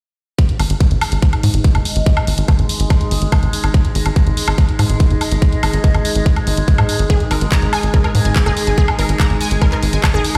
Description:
psychedelic trance; 143 BPM; 4/4; straight; A4 = 440 Hz
overtone-sweeping drone; sustained chords; 0.6-10.4 s; G#3; -28 LUFS; equal; chorus, built-in reverb, sidechain pumping
electronic kick drum; drums; 0.4-10.1 s; -15 LUFS; equal
garage drum kit; drums; 0.4-10.4 s; handclaps, hi-hat, woodblock; -25 LUFS; equal
warbly tape-like pad; texture; 1.0-10.4 s; D#4 to G#5; -29 LUFS; equal; chorus, built-in reverb, sidechain pumping
tight sequencer bass; bass; 0.6-10.4 s; F#1 to G#2; -18 LUFS; equal
unison pluck; riff; 7.1-10.4 s; G#4 to A#5; -25 LUFS; equal; sidechain pumping, delay
little or no reverb; played on a big sound system in a bare room, stone room reverb; -15 LUFS; mono
0.4-10.4 A section
0.4 G#5
| 0.39 0.81 1.23 1.64 | 2.06 2.48 2.90 3.32 | 3.74 4.16 4.58 5.00 | 5.42 5.84 6.26 6.68 | 7.10 7.52 7.94 8.36 | 8.78 9.20 9.62 10.04

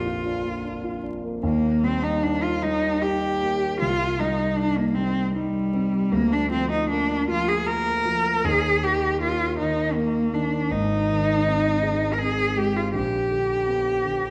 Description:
classical, romantic duo for cello and grand piano; 74-84 BPM; 3/4; rubato; Eb major; A4 = 439 Hz
clear cello; melody; 0.0-14.3 s; G3 to Bb4; -25 LUFS; equal
dark concert grand piano; accompaniment; 0.0-14.3 s; Ab1 to F4; -28 LUFS; equal
wet recital hall reverb, RT60 1.6 s; vinyl crackle; -23 LUFS; mono
0.0-1.4 A section; 1.4-14.3 B section
0.0 Bb; 1.4 Eb; 3.8 Cm; 6.1 Bb/D; 8.4 Eb5; 10.7 Ab; 12.9 Bb(b9)
0.64 | 1.42 2.23 3.02 | 3.80 4.58 5.35 | 6.12 6.90 7.67 | 8.45 9.21 9.96 | 10.72 11.47 12.20 | 12.94 13.67

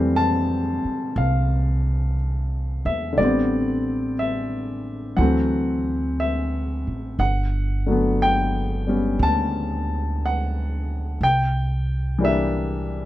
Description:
jazz ballad; 60 BPM; 4/4; swing 68% on 8ths; A4 = 440 Hz
warm baby grand piano; accompaniment; 0.0-13.1 s; D3 to A5; -22 LUFS; left 1 dB
upright bass; bass; 0.0-13.1 s; G1 to F2; -24 LUFS; right 1 dB
moderate studio ambience, RT60 0.5 s; dark, warm production; -20 LUFS; side -14 dB against mid
0.0-13.1 A section
0.0 Fmaj9; 3.2 Am11; 5.2 D7; 7.2 Gmaj9; 11.2 C9
0.17 1.17 2.18 | 3.18 4.18 5.18 6.19 | 7.20 8.21 9.21 10.22 | 11.22 12.21

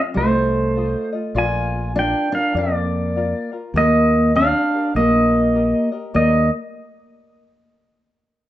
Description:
Hawaiian; 100 BPM; 4/4; swing 62% on 8ths; Eb major; A4 = 442 Hz
tenor ukulele; accompaniment; 0.0-6.5 s; F4 to F5; -29 LUFS; left 4 dB; plate reverb
fingerpicked steel-string acoustic guitar; second line; 0.1-6.5 s; A3 to F4; -20 LUFS; equal; plate reverb
pedal steel guitar; melody; 0.2-6.5 s; C5 to Ab5; -20 LUFS; right 1 dB; plate reverb
mellow fretless electric bass; bass; 0.2-6.5 s; Bb1 to F2; -23 LUFS; left 1 dB; lush chorus
wet small room reverb, RT60 0.6 s; rough home demo mix, nothing above 8.0 kHz; -16 LUFS; side -13 dB against mid
0.0-6.1 A section; 6.1-8.5 B section
0.0 F7; 1.4 Bb; 3.8 Ebmaj7
0.16 0.76 | 1.35 1.95 2.55 3.15 | 3.75 4.35 4.95 5.55 | 6.14

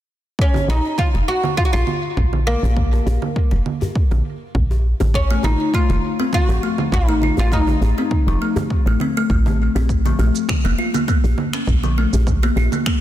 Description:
organic downtempo; 101 BPM; 4/4; swing 54% on 16ths; Bb harmonic minor; A4 = 440 Hz
oud; melody; 0.4-8.7 s; Bb3 to Gb4; -22 LUFS; equal; tape echo
electronic kick drum; drums; 0.4-13.0 s; -20 LUFS; equal; overdrive
electronic congas, shaker and finger snaps; drums; 0.5-13.0 s; -26 LUFS; right 6 dB; soft clipping on snare
djembe; percussion; 0.6-12.8 s; -29 LUFS; left 2 dB
woody FM bass; bass; 0.7-12.7 s; F1 to Bb1; -18 LUFS; equal
kalimba; arpeggios; 5.3-13.0 s; F3 to F4; -22 LUFS; left 3 dB; tape echo
studio reverb; dense, heavily limited modern master; -16 LUFS; side -12 dB against mid
0.4-13.0 A section
0.4 Bb5; 5.1 F7; 9.9 Bb5
| 0.39 0.98 1.58 2.17 | 2.77 3.36 3.96 4.55 | 5.14 5.74 6.33 6.93 | 7.52 8.11 8.71 9.30 | 9.90 10.49 11.08 11.68 | 12.27 12.87

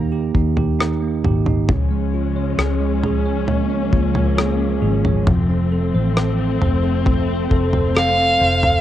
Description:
pop ballad; 67 BPM; 4/4; straight; A4 = 440 Hz
bell-like tine electric piano; accompaniment; 0.0-8.8 s; Db3 to Db5; -22 LUFS; right 8 dB; cassette tape
vintage muted fingered electric bass; bass; 0.0-8.8 s; F1 to Eb2; -20 LUFS; left 1 dB
damped 70s drum kit; drums; 0.3-8.8 s; kick drum, rim click, toms; -21 LUFS; equal; cassette tape
warm studio string section; sustained chords; 1.7-8.8 s; F3 to Db4; -23 LUFS; left 9 dB; stereo widening, cassette tape
rich violin; melody; 8.0-8.8 s; F5; -15 LUFS; equal; cassette tape, tape echo
light reverb, small room ambience; home recording on cassette; -16 LUFS; side -12 dB against mid
0.0-8.8 A section
0.0 Eb; 1.7 Db; 5.3 F
0.80 | 1.69 2.59 3.48 4.38 | 5.27 6.17 7.07 7.96

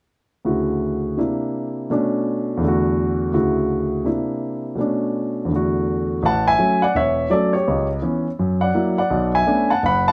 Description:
solo jazz; 166 BPM; 4/4; swing 63% on 8ths; A major; A4 = 440 Hz
warm grand piano; solo; 0.4-10.1 s; E1 to B5; -20 LUFS; equal
moderate studio reverb, RT60 0.9 s; -20 LUFS; mono
0.4-6.2 A section; 6.2-10.1 B section
0.4 Dmaj9; 1.2 C9; 1.9 Bm9; 2.6 E9sus4; 3.3 Dmaj9; 4.1 C9; 4.8 Bm9; 5.5 E9sus4; 6.2 A6; 7.7 C#m7b5; 8.4 F#7; 9.1 Bm9
| 0.45 0.81 1.17 1.53 | 1.89 2.25 2.61 2.97 | 3.33 3.69 4.05 4.41 | 4.77 5.13 5.50 5.86 | 6.22 6.58 6.94 7.30 | 7.66 8.02 8.38 8.74 | 9.10 9.46 9.82

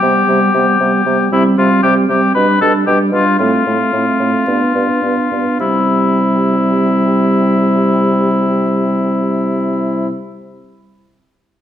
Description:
quick classical-period movement for wind quintet; 102-118 BPM; 4/4; rubato; C major; A4 = 440 Hz
warm oboe; second line; 0.0-10.1 s; E4 to B4; -16 LUFS; left 4 dB
mellow French horn; accompaniment; 0.0-10.1 s; G3 to B3; -17 LUFS; left 1 dB
mellow clarinet; accompaniment; 0.0-10.1 s; B3 to D4; -18 LUFS; right 6 dB
mellow bassoon; bass; 0.0-10.1 s; G2 to C3; -19 LUFS; right 1 dB
wet recital hall reverb, RT60 1.7 s; dark, warm production; -11 LUFS; side -10 dB against mid
0.0-5.6 A section; 5.6-10.1 B section
slowing down 0.3-5.6
0.0 G/C; 1.3 C5; 2.3 G/B; 3.4 F/A; 4.5 G7; 5.6 C
0.28 0.80 | 1.31 1.83 2.34 2.86 | 3.39 3.93 4.47 5.04 | 5.62 6.18 6.74 7.29 | 7.85 8.41 8.97 9.53

